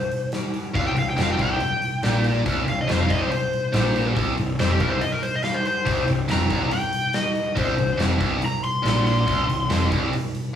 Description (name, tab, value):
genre	blues rock power trio and southern rock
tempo	141 BPM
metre	4/4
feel	straight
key	C minor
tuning	A4 = 437 Hz
part	overdriven slide guitar	melody	0.0-9.9 s	G4 to C6	-25 LUFS	left 2 dB	none
part	huge arena drum kit	drums	0.1-10.4 s	hi-hat, kick drum, snare drum	-26 LUFS	equal	none
part	tight distorted guitar	riff	0.7-10.1 s	C2 to Bb2	-25 LUFS	equal	distortion
part	fuzz picked electric bass	bass	0.8-10.1 s	C1 to Bb1	-26 LUFS	equal	overdrive
room	moderate large studio reverb, RT60 1.1 s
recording	band playing live in one room, studio ambience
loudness	-20 LUFS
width	side -9 dB against mid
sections	0.0-10.6 A section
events	electric slide guitar solo 0.0-10.6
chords	none